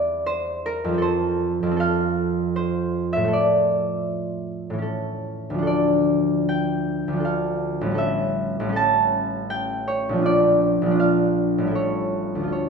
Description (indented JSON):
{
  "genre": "classical, solo harp piece",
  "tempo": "78 BPM",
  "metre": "3/4",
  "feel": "uneven beats, rubato",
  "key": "D minor",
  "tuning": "A4 = 440 Hz",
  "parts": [
    { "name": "concert harp", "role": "solo", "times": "0.0-12.7 s", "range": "A1 to A5", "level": "-20 LUFS", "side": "right 1 dB", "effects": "none" }
  ],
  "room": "moderate recital hall reverb, RT60 1.4 s",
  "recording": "none",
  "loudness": "-20 LUFS",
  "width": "side -5 dB against mid",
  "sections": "0.0-12.7 A section",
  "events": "none",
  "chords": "0.0 C/E; 1.0 F; 3.3 Dm/A; 4.9 A; 5.7 Dm; 8.0 A7; 10.3 Bb; 11.7 A7"
}